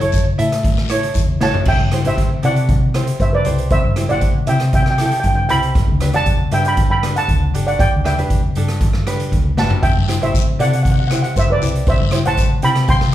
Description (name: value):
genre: calypso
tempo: 118 BPM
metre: 4/4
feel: straight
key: unclear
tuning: A4 = 439 Hz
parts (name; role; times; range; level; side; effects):
- steel pan; melody; 0.0-13.1 s; B4 to C6; -19 LUFS; right 2 dB; none
- tenor ukulele; accompaniment; 0.0-12.9 s; D4 to E5; -24 LUFS; right 2 dB; none
- hollow-body short-scale fingered electric bass; bass; 0.0-13.1 s; E1 to C3; -20 LUFS; equal; none
- street-band drum kit; drums; 0.0-13.1 s; crash cymbal, hi-hat, kick drum, rim click, snare drum, toms; -17 LUFS; equal; none
- guiro; percussion; 0.1-1.3, 9.8-13.1 s; none; -31 LUFS; left 7 dB; none
room: moderate large studio reverb, RT60 0.9 s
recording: band playing live in one room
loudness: -14 LUFS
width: side -13 dB against mid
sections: 0.0-1.7 A section; 1.7-13.1 A section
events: drum fill 1.4, 9.6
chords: 0.0 A; 1.7 C; 5.8 Gadd9; 9.8 C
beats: 0.14 0.65 1.16 | 1.67 2.18 2.69 3.20 | 3.71 4.22 4.73 5.24 | 5.75 6.26 6.78 7.28 | 7.79 8.30 8.81 9.32 | 9.83 10.34 10.85 11.36 | 11.87 12.38 12.88